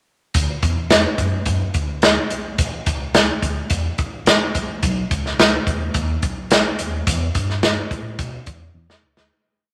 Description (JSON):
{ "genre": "uptempo 1960s-style soul", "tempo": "107 BPM", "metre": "4/4", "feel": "straight", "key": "D major", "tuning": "A4 = 442 Hz", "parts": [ { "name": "mellow tine electric piano", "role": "bass", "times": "0.3-9.3 s", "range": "A1 to B2", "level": "-27 LUFS", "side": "equal", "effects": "none" }, { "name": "swinging big-band drum kit", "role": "drums", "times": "0.3-9.3 s", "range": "hi-hat, kick drum, snare drum", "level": "-20 LUFS", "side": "equal", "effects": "none" } ], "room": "moderate club reverb, RT60 0.7 s", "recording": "none", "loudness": "-19 LUFS", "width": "mono", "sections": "0.3-9.3 verse", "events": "fade-out 7.1-9.3; drum fill 8.7-9.3", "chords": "none" }